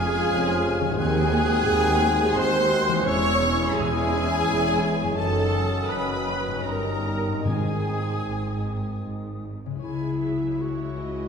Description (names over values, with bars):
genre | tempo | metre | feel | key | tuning
classical | 71-90 BPM | 3/4 | rubato | C# minor | A4 = 440 Hz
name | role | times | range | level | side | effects
rich symphonic violin section | melody | 0.0-11.3 s | C#5 to C#6 | -32 LUFS | left 3 dB | none
bright concert flute | second line | 0.0-9.5 s | D#6 to F#6 | -35 LUFS | left 1 dB | none
dark clarinet | second line | 0.0-11.3 s | B#3 to F#4 | -33 LUFS | left 1 dB | none
warm symphonic violin section | second line | 0.0-11.3 s | C#5 to C#6 | -33 LUFS | left 3 dB | none
clear symphonic viola section | accompaniment | 0.0-11.3 s | F#3 to C#5 | -29 LUFS | right 3 dB | none
bright trombone section | sustained chords | 0.0-9.5 s | D#3 to G#3 | -33 LUFS | right 2 dB | none
mellow French horn section | sustained chords | 0.0-11.3 s | G#3 to F#4 | -33 LUFS | left 3 dB | none
concert harp | arpeggios | 0.0-11.3 s | F2 to D#5 | -32 LUFS | left 7 dB | none
clear trumpet section | stabs | 0.0-9.0 s | Ab4 to C#5 | -29 LUFS | right 1 dB | none
rich symphonic double bass section | bass | 0.0-11.3 s | E1 to D#2 | -31 LUFS | right 2 dB | none
warm symphonic cello section | bass | 0.0-11.3 s | C#2 to G#2 | -30 LUFS | right 2 dB | none
timpani | percussion | 7.5-8.6 s | G#2 | -30 LUFS | left 1 dB | none
room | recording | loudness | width
wet recital hall reverb, RT60 1.6 s | none | -21 LUFS | side -6 dB against mid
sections
0.0-9.8 A section; 9.8-11.3 B section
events
none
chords
0.0 Db/F; 1.0 G#7/D#; 3.1 C#m/E; 5.2 D#m7b5/F#; 6.6 D#7/G; 7.5 G#; 9.8 C#m